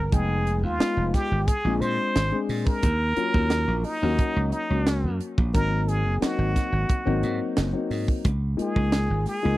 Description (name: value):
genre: electric jazz fusion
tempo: 88 BPM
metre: 4/4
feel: straight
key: unclear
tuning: A4 = 440 Hz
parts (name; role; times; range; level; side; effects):
- trumpet with plunger mute; melody; 0.0-9.6 s; Eb4 to C5; -28 LUFS; right 1 dB; none
- dark grand piano; accompaniment; 0.0-9.6 s; Gb3 to G5; -28 LUFS; left 4 dB; none
- slap bass; bass; 0.0-9.6 s; F1 to Bb2; -25 LUFS; right 1 dB; none
- tight funk drum kit; drums; 0.1-9.4 s; hi-hat, kick drum, snare drum; -25 LUFS; right 1 dB; none
room: little or no reverb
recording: dry, close 1970s-style studio recording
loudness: -22 LUFS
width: side -16 dB against mid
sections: 0.0-9.6 A section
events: none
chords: 0.1 Fm7b5; 1.5 Bb7; 2.8 Ebm7; 5.5 Ab9; 8.3 Db69